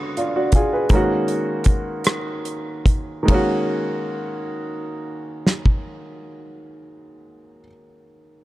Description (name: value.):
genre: slow six-eight R&B.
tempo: 46-56 BPM (dotted quarters).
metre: 6/8.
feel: straight.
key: F# major.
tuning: A4 = 440 Hz.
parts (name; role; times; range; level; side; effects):
clear grand piano; accompaniment; 0.0-8.4 s; D3 to B4; -23 LUFS; equal; none.
damped 70s drum kit; drums; 0.2-5.9 s; hi-hat, kick drum, ride cymbal, rim click, snare drum; -18 LUFS; equal; none.
room: light reverb, small room ambience.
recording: dark, warm production.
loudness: -19 LUFS.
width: side -16 dB against mid.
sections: 0.0-3.3 A section; 3.3-8.4 B section.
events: slowing down 0.0-3.3.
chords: 0.0 Bm6; 0.9 F#69.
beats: | 0.90 2.04 | 3.28 4.57 | 5.86 7.16.